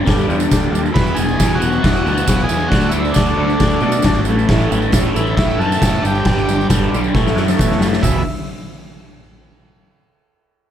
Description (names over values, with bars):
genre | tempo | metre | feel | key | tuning
garage rock duo or trio | 136 BPM | 4/4 | straight | unclear | A4 = 440 Hz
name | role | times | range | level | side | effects
crunchy overdriven guitar | riff | 0.0-8.2 s | E2 to D4 | -18 LUFS | equal | phaser
combo organ | sustained chords | 0.1-8.2 s | C#4 to D5 | -28 LUFS | right 1 dB | none
growling picked electric bass | bass | 0.1-8.2 s | E1 to B2 | -20 LUFS | equal | overdrive
oversized low-tuned drum kit | drums | 0.1-8.1 s | crash cymbal, hi-hat, kick drum, snare drum, toms | -17 LUFS | equal | none
tambourine | percussion | 0.1-8.2 s | none | -32 LUFS | right 9 dB | none
overdriven combo organ | melody | 0.9-8.2 s | D4 to B4 | -22 LUFS | equal | spring reverb
room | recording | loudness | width
light reverb | none | -13 LUFS | side -10 dB against mid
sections
0.0-8.0 A section; 8.0-9.8 B section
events
drum fill 7.1-8.0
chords
0.0 G; 1.0 E; 2.7 D; 4.3 A; 6.0 G; 7.1 A; 8.0 E5